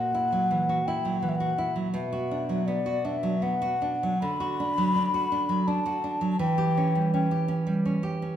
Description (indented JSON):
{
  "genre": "romantic duo for flute and classical guitar",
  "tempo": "82 BPM",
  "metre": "3/4",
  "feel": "rubato",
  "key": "B minor, D major from 4.2 s",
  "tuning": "A4 = 439 Hz",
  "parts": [
    { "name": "mellow hollow baroque flute", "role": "melody", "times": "0.0-7.5 s", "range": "D5 to B5", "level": "-28 LUFS", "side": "left 4 dB", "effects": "none" },
    { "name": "nylon-string guitar", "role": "accompaniment", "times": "0.0-8.4 s", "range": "A#2 to G4", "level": "-26 LUFS", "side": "right 2 dB", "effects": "none" }
  ],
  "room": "wet recital hall reverb, RT60 1.6 s",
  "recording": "recorded in a church or concert hall",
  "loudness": "-24 LUFS",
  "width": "side -10 dB against mid",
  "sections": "0.0-8.4 A section",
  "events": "none",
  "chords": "0.0 F#7/A#; 2.0 Bm; 4.2 D; 6.4 C#dim/E"
}